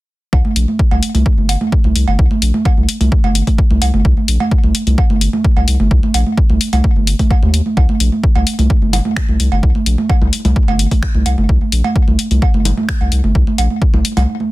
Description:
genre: minimal techno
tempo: 129 BPM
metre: 4/4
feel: straight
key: C minor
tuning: A4 = 437 Hz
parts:
  - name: saturated sub bass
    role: bass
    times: 0.3-14.3 s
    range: G1 to Eb2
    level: -14 LUFS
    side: equal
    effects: sidechain pumping
  - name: electronic kick drum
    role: drums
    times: 0.3-13.9 s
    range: none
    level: -13 LUFS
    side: equal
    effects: overdrive
  - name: cowbell and congas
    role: percussion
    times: 0.3-14.5 s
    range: none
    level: -19 LUFS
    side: right 3 dB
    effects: ping-pong delay
  - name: punchy analog drum machine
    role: drums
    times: 0.6-14.3 s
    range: finger snaps, hi-hat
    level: -20 LUFS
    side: left 5 dB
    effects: overdrive, soft clipping on snare
room: little or no reverb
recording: dense, heavily limited modern master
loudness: -11 LUFS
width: side -18 dB against mid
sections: 0.3-14.5 A section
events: break 14.3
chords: none

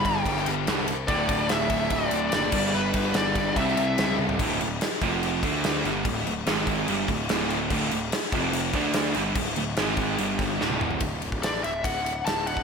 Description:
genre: hard rock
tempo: 145 BPM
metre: 4/4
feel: straight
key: unclear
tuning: A4 = 442 Hz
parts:
  - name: high-gain lead guitar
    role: melody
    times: 0.0-4.2, 11.4-12.6 s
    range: B4 to A5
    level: -28 LUFS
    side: left 2 dB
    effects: distortion, slapback echo
  - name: overdriven semi-hollow guitar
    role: riff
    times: 0.0-11.0 s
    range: D2 to D4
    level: -29 LUFS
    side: right 10 dB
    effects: none
  - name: sludgy distorted guitar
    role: riff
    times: 0.0-11.0 s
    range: D2 to D4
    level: -31 LUFS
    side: left 11 dB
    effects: overdrive, slapback echo
  - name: fuzz picked electric bass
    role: bass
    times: 0.0-12.6 s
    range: D1 to D2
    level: -32 LUFS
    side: equal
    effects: overdrive
  - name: gated 80s drum kit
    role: drums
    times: 0.0-12.6 s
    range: crash cymbal, kick drum, ride cymbal, snare drum, toms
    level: -27 LUFS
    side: left 1 dB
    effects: none
room: moderate lush hall reverb, RT60 1.8 s, studio ambience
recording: big arena sound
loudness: -23 LUFS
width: side -5 dB against mid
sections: 0.0-4.4 A section; 4.4-11.0 B section; 11.0-12.6 C section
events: drum fill 4.2, 10.6-11.0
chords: 0.0 G5; 1.1 D; 2.5 G; 3.6 C; 4.4 D5; 5.0 F5; 5.4 D5; 6.5 G#5; 6.9 D5; 8.3 F5; 8.7 D5; 9.8 G#5; 10.2 G5; 10.6 D5

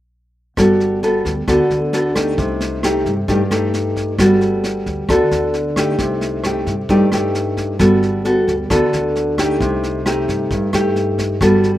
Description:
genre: bossa nova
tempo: 133 BPM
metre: 4/4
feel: straight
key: G major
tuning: A4 = 442 Hz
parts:
  - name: nylon-string guitar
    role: accompaniment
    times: 0.6-11.8 s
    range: G2 to A4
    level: -15 LUFS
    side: equal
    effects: slapback echo
  - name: upright bass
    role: bass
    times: 0.6-11.8 s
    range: G1 to G2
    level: -24 LUFS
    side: equal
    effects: none
  - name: vintage brush drum kit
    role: drums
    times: 0.6-11.7 s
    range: kick drum, rim click, snare drum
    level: -24 LUFS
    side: equal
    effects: none
room: little or no reverb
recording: recorded outdoors, with no room sound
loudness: -14 LUFS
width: side -14 dB against mid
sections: 0.6-11.8 A section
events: none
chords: 0.6 Gmaj9; 2.4 Cm6; 4.2 Gmaj9; 6.0 Cm6; 7.8 Gmaj9; 9.6 Cm6

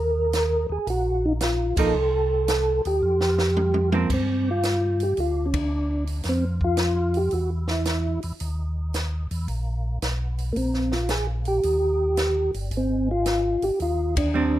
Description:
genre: soul jazz organ trio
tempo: 111 BPM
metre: 4/4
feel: swing 68% on 8ths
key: G minor from 4.1 s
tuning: A4 = 438 Hz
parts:
  - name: percussive tonewheel organ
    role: melody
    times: 0.0-14.6 s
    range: Bb3 to Bb4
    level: -23 LUFS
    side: equal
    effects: slow rotary speaker, chorus vibrato, plate reverb
  - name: tonewheel organ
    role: bass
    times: 0.0-14.6 s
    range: G1 to G2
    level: -26 LUFS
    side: equal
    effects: overdrive, chorus vibrato, slow rotary speaker
  - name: compact cocktail drum kit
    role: drums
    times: 0.3-14.2 s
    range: crash cymbal, hi-hat, kick drum, ride cymbal, snare drum, toms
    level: -29 LUFS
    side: equal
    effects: none
  - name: hollow-body jazz guitar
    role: accompaniment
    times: 1.8-4.1, 14.3-14.6 s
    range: F3 to Eb4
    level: -25 LUFS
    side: right 5 dB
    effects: none
room: light reverb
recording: none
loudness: -21 LUFS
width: side -13 dB against mid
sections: 0.0-4.1 A section; 4.1-14.6 B section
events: band accent 1.7, 5.4, 14.1; drum fill 3.0-4.1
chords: 0.0 Eb5; 2.0 Cm; 3.0 Fsus2; 4.1 G5; 6.3 N.C.; 8.4 Eb5; 10.6 Abadd9/Bb (rootless); 11.6 Eb; 12.7 Abmaj7#11

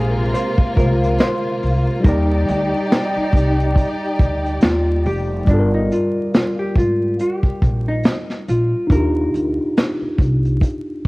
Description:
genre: lo-fi hip hop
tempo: 70 BPM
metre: 4/4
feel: swing 57% on 16ths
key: unclear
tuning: A4 = 440 Hz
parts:
  - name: hollow-body jazz guitar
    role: melody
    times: 0.0-11.1 s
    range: D4 to C5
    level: -23 LUFS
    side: equal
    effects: cassette tape
  - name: tine electric piano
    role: accompaniment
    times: 0.0-11.1 s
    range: G3 to D5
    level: -22 LUFS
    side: equal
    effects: overdrive, fast stereo tremolo, cassette tape
  - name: rich studio string section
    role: sustained chords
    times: 0.0-5.4 s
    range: C3 to D5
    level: -23 LUFS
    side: equal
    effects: cassette tape
  - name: upright bass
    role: bass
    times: 0.0-11.1 s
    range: F1 to Eb2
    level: -20 LUFS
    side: equal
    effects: tube saturation
  - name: vintage brush drum kit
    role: drums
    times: 0.3-11.1 s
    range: hi-hat, kick drum, snare drum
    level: -16 LUFS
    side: equal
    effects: cassette tape
room: small room ambience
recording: home recording on cassette, vinyl crackle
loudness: -15 LUFS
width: side -22 dB against mid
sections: 0.0-5.5 A section; 5.5-11.1 B section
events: none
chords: 0.0 Ab69; 2.0 Ebmaj7; 5.5 Gm7; 8.9 Ebmaj9

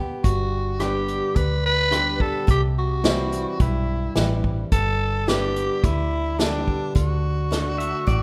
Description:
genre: honky-tonk and classic country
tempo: 107 BPM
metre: 4/4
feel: straight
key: G major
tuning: A4 = 440 Hz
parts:
  - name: picked steel-string acoustic guitar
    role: accompaniment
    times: 0.0-8.2 s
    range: G2 to G4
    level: -32 LUFS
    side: equal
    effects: none
  - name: vintage muted fingered electric bass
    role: bass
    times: 0.0-8.2 s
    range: G1 to D2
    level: -27 LUFS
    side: equal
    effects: none
  - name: growling tenor saxophone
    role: melody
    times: 0.2-8.2 s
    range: D4 to B4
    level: -27 LUFS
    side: equal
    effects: none
  - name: unplugged drum kit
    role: drums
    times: 0.2-8.2 s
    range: hi-hat, kick drum, rim click, snare drum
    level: -26 LUFS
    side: equal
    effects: none
  - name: warm upright piano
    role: accompaniment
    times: 0.8-8.0 s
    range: G3 to C5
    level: -34 LUFS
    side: equal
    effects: none
  - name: pedal steel guitar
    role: second line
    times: 7.8-8.2 s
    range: D5 to E5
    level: -30 LUFS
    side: equal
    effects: none
room: light reverb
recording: none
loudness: -22 LUFS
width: mono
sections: 0.0-8.2 A section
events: none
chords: 0.0 G; 2.5 C; 4.7 G; 7.0 D

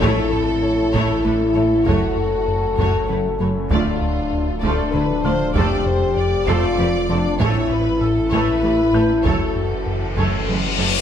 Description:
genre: cinematic, hybrid orchestral and electronic film score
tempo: 65 BPM (dotted quarters)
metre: 6/8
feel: straight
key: unclear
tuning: A4 = 441 Hz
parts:
  - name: warm symphonic violin section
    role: melody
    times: 0.0-10.9 s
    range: B4 to D5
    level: -31 LUFS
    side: left 4 dB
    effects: none
  - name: warm symphonic violin section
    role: second line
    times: 0.0-10.6 s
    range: F4 to D5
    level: -28 LUFS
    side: left 2 dB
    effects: none
  - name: rich symphonic viola section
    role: accompaniment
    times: 0.0-10.9 s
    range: G#3 to A4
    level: -28 LUFS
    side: right 3 dB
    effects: none
  - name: deep dark ambient pad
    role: sustained chords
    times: 0.0-11.0 s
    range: E3 to C#5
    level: -28 LUFS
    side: equal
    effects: chorus, built-in reverb
  - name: warm French horn section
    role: sustained chords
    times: 0.0-10.2 s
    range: C#4 to A4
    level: -20 LUFS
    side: left 2 dB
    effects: none
  - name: round analog bass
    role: riff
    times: 0.0-11.0 s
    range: D2 to A3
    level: -24 LUFS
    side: left 1 dB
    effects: none
  - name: phased detuned saw bass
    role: bass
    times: 0.0-11.0 s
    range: D1 to A1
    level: -27 LUFS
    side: right 1 dB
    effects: phaser
  - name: rich symphonic cello section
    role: bass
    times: 0.0-10.9 s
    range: D2 to A2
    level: -28 LUFS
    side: right 4 dB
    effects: none
  - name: rich symphonic double bass section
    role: bass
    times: 0.0-10.9 s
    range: F1 to D2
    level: -29 LUFS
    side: right 5 dB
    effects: none
  - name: taiko ensemble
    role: drums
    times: 0.0-10.7 s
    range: none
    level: -27 LUFS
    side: right 1 dB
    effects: none
  - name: warm concert grand piano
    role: texture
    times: 0.0-11.0 s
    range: E4 to C7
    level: -34 LUFS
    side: left 1 dB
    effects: tape echo
  - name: reverse cymbal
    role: sound effects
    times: 9.9-11.0 s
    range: none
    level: -23 LUFS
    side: left 5 dB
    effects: none
room: wet scoring stage reverb, RT60 2.2 s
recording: none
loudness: -16 LUFS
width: side -9 dB against mid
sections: 0.0-11.0 A section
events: reverse cymbal 9.9-11.0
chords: 0.0 A; 1.9 F#m; 3.7 Dm; 5.6 F; 7.4 A; 9.2 F#m

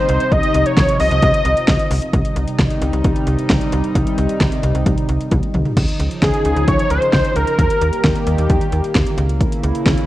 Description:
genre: synth-pop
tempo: 132 BPM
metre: 4/4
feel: straight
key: unclear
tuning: A4 = 440 Hz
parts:
  - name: wide unison lead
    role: melody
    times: 0.0-1.9, 6.2-8.3 s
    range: Ab4 to Eb5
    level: -18 LUFS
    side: equal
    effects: tape echo
  - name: chorused pulse-width pad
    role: sustained chords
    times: 0.0-10.1 s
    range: C3 to G4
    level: -22 LUFS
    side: equal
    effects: none
  - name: slap-like FM bass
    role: bass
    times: 0.1-10.0 s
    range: C2 to Eb2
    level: -19 LUFS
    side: equal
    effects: none
  - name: deep house drum kit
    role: drums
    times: 0.1-10.1 s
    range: crash cymbal, hi-hat, kick drum, snare drum, toms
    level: -18 LUFS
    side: equal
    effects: overdrive
room: moderate scoring stage reverb, RT60 1.7 s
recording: worn, warbling old tape, cassette tape, warbly pitch drift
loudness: -14 LUFS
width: side -15 dB against mid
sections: 0.0-2.1 A section; 2.1-5.8 B section; 5.8-10.1 C section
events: drum fill 5.3-5.8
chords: 0.0 Cm; 5.8 Dbadd9; 7.6 Eb; 9.2 Dbm6

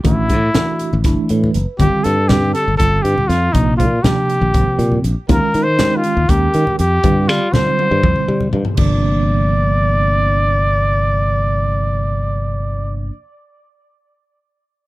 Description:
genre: electric jazz fusion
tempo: 241 BPM (eighths)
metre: 7/8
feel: straight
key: G dorian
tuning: A4 = 440 Hz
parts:
  - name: bell-like tine electric piano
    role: accompaniment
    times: 0.0-13.1 s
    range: C3 to B4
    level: -21 LUFS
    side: right 2 dB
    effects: fast stereo tremolo, phaser
  - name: modern bright fingered electric bass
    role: bass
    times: 0.0-13.1 s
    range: F#1 to G3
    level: -17 LUFS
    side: equal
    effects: none
  - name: crisp fusion drum kit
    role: drums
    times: 0.0-8.9 s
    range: crash cymbal, hi-hat, kick drum, snare drum, toms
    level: -20 LUFS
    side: equal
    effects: none
  - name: congas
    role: percussion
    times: 0.0-9.0 s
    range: none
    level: -20 LUFS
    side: left 2 dB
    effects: none
  - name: warm trumpet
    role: melody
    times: 0.1-13.0 s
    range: Eb4 to D5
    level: -18 LUFS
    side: equal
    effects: none
room: little or no reverb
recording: none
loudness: -13 LUFS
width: side -18 dB against mid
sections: 0.0-8.8 A section; 8.8-12.2 B section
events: tine electric piano fill 1.1-1.8; drum fill 7.3-8.8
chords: 0.1 Asus4; 1.8 G7sus4; 3.5 Bbsus4; 5.3 Eb9sus4; 7.0 G7sus4; 8.8 Gm

